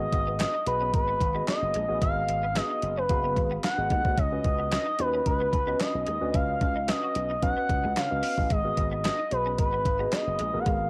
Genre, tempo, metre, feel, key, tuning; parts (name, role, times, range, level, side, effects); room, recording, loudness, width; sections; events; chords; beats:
early-eighties boogie funk; 111 BPM; 4/4; straight; G# dorian; A4 = 440 Hz
expressive synth lead; melody; 0.0-10.9 s; B4 to F#5; -30 LUFS; equal; chorus, cassette tape
tine electric piano; accompaniment; 0.0-10.9 s; B3 to E#5; -36 LUFS; equal; cassette tape
slap bass with an envelope filter; bass; 0.0-10.9 s; F#1 to C#3; -35 LUFS; equal
electric guitar at the edge of break-up; riff; 0.1-10.8 s; G#3 to F#4; -44 LUFS; equal; ensemble chorus, cassette tape
crisp 8-bit digital drum machine; drums; 0.1-10.8 s; handclaps, hi-hat, kick drum, snare drum; -31 LUFS; equal
group handclap; percussion; 0.4-10.3 s; -46 LUFS; equal
light reverb, digital ambience; home recording on cassette; -27 LUFS; mono
0.0-10.9 A section
0.0 G#m7; 4.2 C#9sus4; 8.5 G#m7
0.40 0.94 1.48 | 2.02 2.56 3.10 3.64 | 4.18 4.72 5.26 5.80 | 6.34 6.88 7.42 7.96 | 8.50 9.04 9.58 10.12 | 10.66